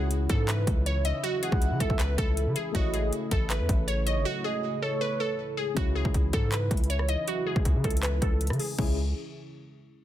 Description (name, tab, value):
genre	hip hop, trap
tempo	159 BPM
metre	4/4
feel	half-time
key	C# minor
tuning	A4 = 441 Hz
part	glassy wavetable pluck	melody	0.0-9.0 s	F#4 to D#5	-31 LUFS	equal	chorus, low-pass filter, digital delay
part	breathy flute-like synth lead	second line	0.0-5.4 s	C#5 to F#5	-35 LUFS	right 5 dB	chorus, digital delay
part	dark concert grand piano	accompaniment	0.0-9.0 s	C#3 to C#5	-40 LUFS	left 6 dB	low-pass filter
part	dark analog pad	sustained chords	0.0-9.0 s	C#3 to E4	-37 LUFS	equal	chorus, low-pass filter
part	hard-hitting 808-style bass	bass	0.0-9.1 s	G#1 to C#3	-28 LUFS	equal	none
part	trap drum kit	drums	0.1-8.9 s	crash cymbal, handclaps, hi-hat, kick drum, rim click	-28 LUFS	equal	none
room	little or no reverb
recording	dense, heavily limited modern master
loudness	-25 LUFS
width	side -12 dB against mid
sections	0.0-5.8 A section; 5.8-8.8 B section; 8.8-10.0 C section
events	break 4.3-5.8; filter sweep 5.8-8.8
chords	0.0 C#m; 2.7 A; 5.8 C#m